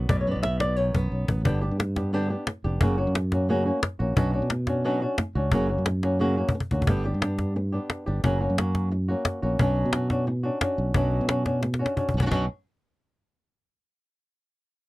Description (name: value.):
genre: flamenco.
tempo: 177 BPM.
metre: 4/4.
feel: straight.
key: B harmonic minor.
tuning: A4 = 442 Hz.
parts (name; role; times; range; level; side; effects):
flamenco guitar; melody; 0.0-12.4 s; F#2 to E5; -27 LUFS; equal; none.
fingered electric bass; bass; 0.0-12.5 s; E#1 to B2; -26 LUFS; equal; none.
cajon; percussion; 0.1-12.4 s; none; -26 LUFS; left 1 dB; none.
room: little or no reverb.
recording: dry, close 1970s-style studio recording.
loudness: -23 LUFS.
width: side -19 dB against mid.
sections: 0.0-1.5 A section; 1.5-12.3 B section; 12.3-13.7 C section.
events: nylon-string guitar solo 0.0-1.5; drum fill 0.4-1.5, 6.0-6.9, 11.6-12.3.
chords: 0.1 B5; 1.5 G; 2.8 F#; 4.2 Bmadd9; 5.5 F#; 6.9 G; 8.2 F#; 9.6 Bmadd9; 12.3 N.C..